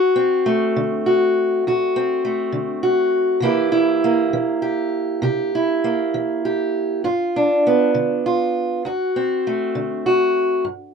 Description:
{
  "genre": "blues",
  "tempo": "66 BPM (dotted quarters)",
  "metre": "12/8",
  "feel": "straight",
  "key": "unclear",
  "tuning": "A4 = 440 Hz",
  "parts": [
    { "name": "fingerpicked steel-string acoustic guitar", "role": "solo", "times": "0.0-10.9 s", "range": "D2 to G4", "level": "-17 LUFS", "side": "equal", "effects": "none" }
  ],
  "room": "moderate booth ambience, RT60 0.2 s",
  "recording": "minimal, uncompressed stereo recording",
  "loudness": "-17 LUFS",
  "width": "side -6 dB against mid",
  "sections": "0.0-10.7 A section",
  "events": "none",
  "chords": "0.0 D7; 3.4 C7; 7.1 G7; 8.9 D7"
}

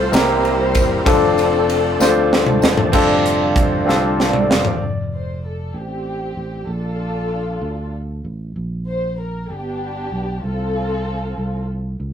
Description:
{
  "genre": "slow gospel",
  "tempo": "64 BPM (dotted quarters)",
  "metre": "6/8",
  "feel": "straight",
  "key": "F major",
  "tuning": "A4 = 438 Hz",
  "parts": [
    { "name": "dark studio string section", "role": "melody", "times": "0.0-2.3, 5.1-11.7 s", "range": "B3 to C5", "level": "-24 LUFS", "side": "left 1 dB", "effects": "none" },
    { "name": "clear concert grand piano", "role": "accompaniment", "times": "0.0-5.0 s", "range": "C3 to F5", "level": "-18 LUFS", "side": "left 2 dB", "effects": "none" },
    { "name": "overdriven tonewheel organ", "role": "sustained chords", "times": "0.0-4.8 s", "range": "D3 to Bb4", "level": "-22 LUFS", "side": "right 1 dB", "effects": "slow rotary speaker, chorus vibrato" },
    { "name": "fingered electric bass", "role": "bass", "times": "0.0-12.1 s", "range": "E1 to D2", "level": "-25 LUFS", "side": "right 1 dB", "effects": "none" },
    { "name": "crisp fusion drum kit", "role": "drums", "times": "0.1-4.8 s", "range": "crash cymbal, hi-hat, kick drum, ride cymbal, snare drum, toms", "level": "-19 LUFS", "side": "right 1 dB", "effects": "none" },
    { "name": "tambourine", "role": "percussion", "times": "0.1-2.9 s", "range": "none", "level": "-31 LUFS", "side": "left 2 dB", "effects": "none" },
    { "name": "warm brass ensemble", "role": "sustained chords", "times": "2.9-4.8 s", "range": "A4 to F5", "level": "-28 LUFS", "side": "right 4 dB", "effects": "none" }
  ],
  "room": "light reverb",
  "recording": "rough rehearsal-room recording",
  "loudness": "-16 LUFS",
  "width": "side -8 dB against mid",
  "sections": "0.0-2.9 A section; 2.9-4.8 B section; 4.8-12.1 C section",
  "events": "drum fill 2.0-2.9, 3.9-4.8",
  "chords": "0.1 C7; 1.1 F6; 4.8 F; 6.7 Bb; 7.6 D5; 8.6 Bbsus2; 9.5 G; 10.4 Csus4; 11.4 N.C."
}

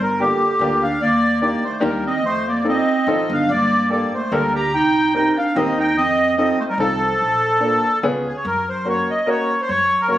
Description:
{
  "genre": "musette waltz",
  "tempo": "146 BPM",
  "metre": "3/4",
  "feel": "swing 54% on 8ths, rubato",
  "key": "unclear",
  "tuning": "A4 = 441 Hz",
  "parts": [
    { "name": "accordion", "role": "melody", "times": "0.0-10.2 s", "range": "G4 to Bb5", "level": "-19 LUFS", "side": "equal", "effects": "light tremolo tuning, slapback echo" },
    { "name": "clear clarinet", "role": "second line", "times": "0.0-8.0 s", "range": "D3 to G4", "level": "-21 LUFS", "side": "right 3 dB", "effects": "none" },
    { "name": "upright bass", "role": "bass", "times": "0.0-10.2 s", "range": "G1 to G2", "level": "-29 LUFS", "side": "left 1 dB", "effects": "none" },
    { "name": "clear upright piano", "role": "accompaniment", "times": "0.2-10.2 s", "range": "Bb3 to Bb4", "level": "-22 LUFS", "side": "left 2 dB", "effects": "none" }
  ],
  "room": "light reverb",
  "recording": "recorded on a phone in the room, studio reverb",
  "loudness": "-16 LUFS",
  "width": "side -13 dB against mid",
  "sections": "0.0-8.5 A section; 8.5-10.2 B section",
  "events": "none",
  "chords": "0.0 Gm7; 1.0 Ebmaj7; 2.2 F7; 3.5 Gmadd9; 4.7 Cm7; 6.0 F7; 7.2 Bbmaj7; 8.0 Db7; 8.5 Gb"
}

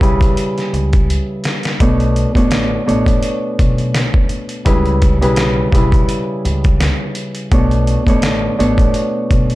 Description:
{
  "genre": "hip hop, boom-bap hip-hop",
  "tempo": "84 BPM",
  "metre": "4/4",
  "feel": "swing 56% on 16ths",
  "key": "B minor",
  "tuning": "A4 = 440 Hz",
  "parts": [
    { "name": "Celtic harp", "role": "accompaniment", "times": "0.0-9.6 s", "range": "B2 to C#5", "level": "-17 LUFS", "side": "equal", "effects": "cassette tape, high-pass filter, low-pass filter" },
    { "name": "upright bass", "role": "bass", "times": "0.0-9.6 s", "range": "A1 to C#2", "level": "-18 LUFS", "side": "equal", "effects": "none" },
    { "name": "trip hop sampler-style drum kit", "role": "drums", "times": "0.0-9.6 s", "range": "hi-hat, kick drum, snare drum", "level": "-15 LUFS", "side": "equal", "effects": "none" }
  ],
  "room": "small room ambience",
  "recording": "dark, warm production",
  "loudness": "-12 LUFS",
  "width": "side -18 dB against mid",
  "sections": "0.0-1.8 A section; 1.8-9.6 B section",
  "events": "drum fill 1.1-1.8",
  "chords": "0.0 C#m7b5; 1.8 Bm9; 4.7 C#m7b5; 7.5 Bm9"
}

